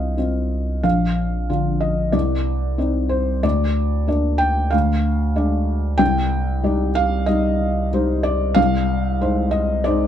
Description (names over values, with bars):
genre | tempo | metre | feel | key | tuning
neoclassical piano and strings | 93 BPM | 4/4 | rubato | C minor | A4 = 440 Hz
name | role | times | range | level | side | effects
felt-muted upright piano | accompaniment | 0.0-10.1 s | Bb1 to G5 | -19 LUFS | left 1 dB | none
saturated sub bass | bass | 0.0-10.1 s | Bb1 to D2 | -22 LUFS | right 1 dB | none
room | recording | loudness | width
light reverb | close, detailed microphones | -17 LUFS | side -10 dB against mid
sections
0.0-10.1 A section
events
none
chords
0.0 Cmadd11; 0.8 Bb; 2.1 Cmadd9; 3.4 Bb/D; 4.7 Ddim; 6.0 Cmadd9; 8.6 Ab6/C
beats
0.19 | 0.84 1.49 2.14 2.79 | 3.44 4.08 4.73 5.37 | 6.00 6.64 7.28 7.92 | 8.57 9.21 9.86